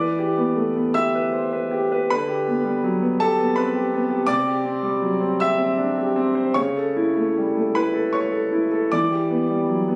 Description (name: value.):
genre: neoclassical minimalist piano.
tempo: 49-56 BPM (dotted quarters).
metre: 6/8.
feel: rubato.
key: E minor.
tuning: A4 = 440 Hz.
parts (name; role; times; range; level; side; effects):
clear concert grand piano; solo; 0.0-10.0 s; C3 to E6; -22 LUFS; equal; none.
room: light reverb.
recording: recorded on a phone in the room, studio reverb, faint mains hum.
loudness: -22 LUFS.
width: mono.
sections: 0.0-10.0 A section.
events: none.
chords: 0.0 Em7; 2.1 G/D; 4.3 C; 6.5 A/C#; 8.9 Em7.